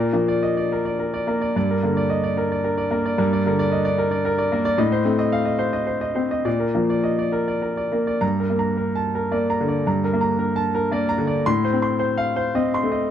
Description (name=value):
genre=neoclassical minimalist piano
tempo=101-113 BPM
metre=3/4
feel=rubato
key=G minor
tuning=A4 = 436 Hz
part: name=clear grand piano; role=solo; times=0.0-13.1 s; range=G2 to C6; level=-19 LUFS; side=equal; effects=none
room=light reverb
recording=dry, close 1970s-style studio recording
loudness=-19 LUFS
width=side -9 dB against mid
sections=0.0-8.2 A section; 8.2-13.1 B section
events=none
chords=0.0 Bb; 1.6 Gm; 4.8 F7/A; 6.5 Bb; 8.2 Gmadd9; 11.5 F7/A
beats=0.42 0.99 | 1.55 2.10 2.64 | 3.18 3.72 4.26 | 4.80 5.33 5.88 | 6.46 7.05 7.63 | 8.22 8.77 9.31 | 9.86 10.40 10.93 | 11.46 12.00 12.54